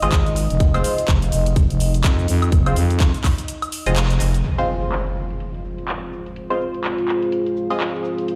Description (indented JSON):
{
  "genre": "bass house",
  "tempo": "125 BPM",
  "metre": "4/4",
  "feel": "swing 59% on 16ths",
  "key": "F minor",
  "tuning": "A4 = 440 Hz",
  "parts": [
    { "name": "band-passed chord stab", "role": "stabs", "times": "0.0-7.8 s", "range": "Ab3 to Eb5", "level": "-28 LUFS", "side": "equal", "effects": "phaser, sidechain pumping, delay" },
    { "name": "growling FM bass", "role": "bass", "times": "0.0-4.4 s", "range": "F1 to F2", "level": "-21 LUFS", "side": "equal", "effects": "tube saturation, sidechain pumping" },
    { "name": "house drum kit", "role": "drums", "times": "0.0-8.4 s", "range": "crash cymbal, handclaps, hi-hat, shaker, woodblock", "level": "-29 LUFS", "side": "equal", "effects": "overdrive, low-pass filter on hats, studio reverb, low-pass filter on perc, low-pass filter on snare, low-pass filter on cymbals" },
    { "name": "deep dark ambient pad", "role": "texture", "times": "0.0-8.4 s", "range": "C4 to F5", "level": "-29 LUFS", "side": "equal", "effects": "chorus, built-in reverb, sidechain pumping" },
    { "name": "electronic kick drum", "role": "drums", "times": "0.1-3.4 s", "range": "none", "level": "-19 LUFS", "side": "equal", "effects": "studio reverb" },
    { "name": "dark analog pad", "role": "sustained chords", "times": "5.1-8.4 s", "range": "Ab3 to C5", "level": "-34 LUFS", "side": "equal", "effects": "chorus, sidechain pumping" },
    { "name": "impact", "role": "sound effects", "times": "4.4-6.4 s", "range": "none", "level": "-30 LUFS", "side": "equal", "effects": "none" }
  ],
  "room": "moderate lush hall reverb, RT60 1.6 s, digital ambience",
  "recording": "played on a big sound system in a bare room, large studio reverb",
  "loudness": "-20 LUFS",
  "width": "mono",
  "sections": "0.0-4.4 A section; 4.4-8.4 B section",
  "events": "filter sweep on FM bass 0.0-4.4; break 3.5-4.4; band accent 4.0; impact 4.4-6.4; filter sweep on drum 4.4-8.4",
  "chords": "0.0 Fm"
}